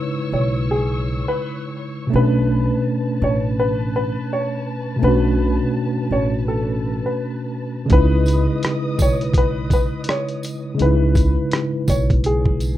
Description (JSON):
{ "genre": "lo-fi hip hop", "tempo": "83 BPM", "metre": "4/4", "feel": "swing 60% on 16ths", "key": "C# minor", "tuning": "A4 = 441 Hz", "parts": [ { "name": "mellow tine electric piano", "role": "accompaniment", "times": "0.0-12.8 s", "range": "B2 to B4", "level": "-21 LUFS", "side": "equal", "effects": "overdrive, fast stereo tremolo, cassette tape, low-pass filter" }, { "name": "dark symphonic string section", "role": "sustained chords", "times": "0.0-10.8 s", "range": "B4 to E6", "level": "-34 LUFS", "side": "left 2 dB", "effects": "low-pass filter" }, { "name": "warm upright piano", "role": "melody", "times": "0.3-12.8 s", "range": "G#4 to C#5", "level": "-24 LUFS", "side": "equal", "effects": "low-pass filter" }, { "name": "upright bass", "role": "bass", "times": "0.3-12.8 s", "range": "A1 to C#2", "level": "-21 LUFS", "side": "equal", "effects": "none" }, { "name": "lo-fi sampler-style drum kit", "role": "drums", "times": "7.9-12.8 s", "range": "hi-hat, kick drum, rim click", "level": "-18 LUFS", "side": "equal", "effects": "none" }, { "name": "tambourine", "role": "percussion", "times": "8.3-12.8 s", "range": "none", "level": "-37 LUFS", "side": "right 2 dB", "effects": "none" } ], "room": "light reverb", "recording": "rough home demo mix", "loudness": "-17 LUFS", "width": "side -13 dB against mid", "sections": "0.0-12.8 A section", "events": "none", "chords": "0.0 C#m9; 2.1 Bm9; 7.9 C#m9", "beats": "0.68 1.40 | 2.12 2.85 3.57 4.29 | 5.02 5.74 6.46 7.18 | 7.91 8.63 9.35 10.08 | 10.80 11.52 12.24" }